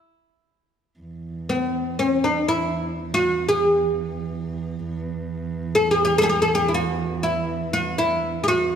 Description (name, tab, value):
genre	Arabic maqam ensemble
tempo	120 BPM (eighths)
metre	10/8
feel	straight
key	E maqam huzam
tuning	A4 = 440 Hz
part	dark cello	drone	1.0-8.8 s	E2	-29 LUFS	right 4 dB	none
part	oud	melody	1.5-8.8 s	B3+40c to A4-40c	-20 LUFS	equal	none
room	moderate concert hall reverb, RT60 1.8 s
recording	none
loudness	-20 LUFS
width	side -8 dB against mid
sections	1.0-8.8 A section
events	none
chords	none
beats	0.00 0.50 | 1.00 1.50 2.00 2.50 3.00 3.50 4.00 4.50 5.00 5.50 | 6.00 6.50 7.00 7.51 8.01 8.51